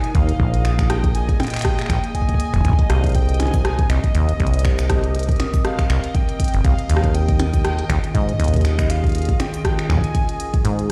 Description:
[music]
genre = IDM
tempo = 120 BPM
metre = 4/4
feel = swing 56% on 16ths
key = Ab major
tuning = A4 = 440 Hz
[part]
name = warbly nostalgic lead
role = melody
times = 0.0-10.9 s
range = Eb5 to Ab5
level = -32 LUFS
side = equal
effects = chorus, tremolo, digital delay
[part]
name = warbly tape-like pad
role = sustained chords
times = 0.0-10.9 s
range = Bb2 to Eb5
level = -31 LUFS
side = equal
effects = chorus, built-in reverb
[part]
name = glitchy drum kit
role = drums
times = 0.0-10.9 s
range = cabasa, finger snaps, hi-hat, percussion blips, rim click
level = -30 LUFS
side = equal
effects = none
[part]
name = bubbling stepped-filter texture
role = texture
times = 0.0-10.9 s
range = Eb5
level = -38 LUFS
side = equal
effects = chorus, built-in reverb, sidechain pumping
[part]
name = deep acid bass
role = bass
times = 0.1-10.9 s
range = F1 to Ab2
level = -21 LUFS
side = equal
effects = tube saturation
[part]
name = electronic kick drum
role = drums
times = 0.1-10.6 s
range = none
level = -22 LUFS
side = equal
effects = none
[sound]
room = little or no reverb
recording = played on a big sound system in a bare room, stone room reverb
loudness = -19 LUFS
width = mono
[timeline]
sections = 0.0-10.9 A section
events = kick drops out 10.6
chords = 0.0 Bb7sus4; 3.1 Abmaj9/C (rootless); 7.1 Eb9sus4

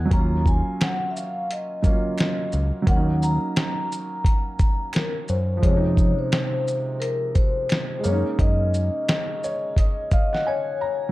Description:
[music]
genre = lo-fi hip hop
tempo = 87 BPM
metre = 4/4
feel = swing 59% on 16ths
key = Eb dorian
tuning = A4 = 440 Hz
[part]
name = felt-muted upright piano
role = accompaniment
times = 0.0-11.1 s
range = C3 to Bb5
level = -28 LUFS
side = right 3 dB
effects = cassette tape, low-pass filter
[part]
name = fat analog bass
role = bass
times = 0.0-8.9 s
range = Db2 to Gb2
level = -22 LUFS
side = equal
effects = none
[part]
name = vibraphone with soft mallets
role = melody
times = 0.1-11.1 s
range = Bb4 to Bb5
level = -27 LUFS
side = left 3 dB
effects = low-pass filter
[part]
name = dusty soul sampler-style drum kit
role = drums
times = 0.1-10.4 s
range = hi-hat, kick drum, shaker, snare drum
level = -22 LUFS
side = equal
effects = none
[part]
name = finger snaps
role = percussion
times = 0.8-9.3 s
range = none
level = -39 LUFS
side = right 5 dB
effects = none
[sound]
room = light reverb, studio reverb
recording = dark, warm production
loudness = -20 LUFS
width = side -17 dB against mid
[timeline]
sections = 0.0-11.1 A section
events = felt piano fill 9.1-11.1; break 10.5-11.1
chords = 0.1 Ebm9; 2.9 Ebm7; 5.6 Fm7; 8.0 Gb69

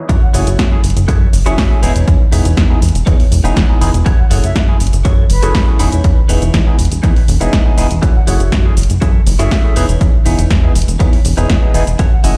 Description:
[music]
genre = filtered disco house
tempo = 121 BPM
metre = 4/4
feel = straight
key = F# dorian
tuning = A4 = 441 Hz
[part]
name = direct-recorded clean electric guitar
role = riff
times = 0.1-12.4 s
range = D#4 to E5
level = -26 LUFS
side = equal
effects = phaser, sidechain pumping, low-pass filter
[part]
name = plucky analog bass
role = bass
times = 0.1-12.3 s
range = E1 to F#2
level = -17 LUFS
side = equal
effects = sidechain pumping, low-pass filter
[part]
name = electronic kick drum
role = drums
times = 0.1-12.1 s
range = none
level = -14 LUFS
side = equal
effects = none
[part]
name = punchy analog drum machine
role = drums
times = 0.1-12.3 s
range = hi-hat, shaker, snare drum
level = -24 LUFS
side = equal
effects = sidechain pumping on hats, sidechain pumping on perc
[part]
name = mellow jazz flute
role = melody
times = 0.2-12.3 s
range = B4 to F#5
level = -29 LUFS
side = equal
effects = sidechain pumping, low-pass filter, delay
[part]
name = overdriven tine electric piano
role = accompaniment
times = 0.3-12.4 s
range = A3 to G#4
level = -24 LUFS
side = equal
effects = phaser, sidechain pumping, low-pass filter
[sound]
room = digital ambience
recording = played on a big sound system in a bare room, large studio reverb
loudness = -12 LUFS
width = mono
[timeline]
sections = 0.1-12.4 A section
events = drop 0.1-12.4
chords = 0.1 F#m7; 1.8 C#m9/E; 4.1 F#m7; 5.8 C#m9/E; 8.0 F#m7; 9.8 C#m9/E

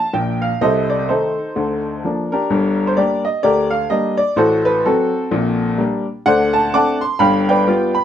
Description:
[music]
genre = jazz, stride piano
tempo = 127 BPM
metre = 4/4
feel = swing 60% on 8ths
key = unclear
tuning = A4 = 440 Hz
[part]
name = clear upright piano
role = solo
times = 0.0-8.0 s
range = G1 to D6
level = -15 LUFS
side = equal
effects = none
[sound]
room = moderate studio reverb, RT60 0.5 s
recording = none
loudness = -15 LUFS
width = side -9 dB against mid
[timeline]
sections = 0.0-8.0 A section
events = none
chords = 0.0 Bb5; 0.6 Adim/C; 1.5 Bb/D; 2.5 Gm; 4.4 F#dim/A; 5.3 Gm/Bb; 6.3 D7; 7.2 G7

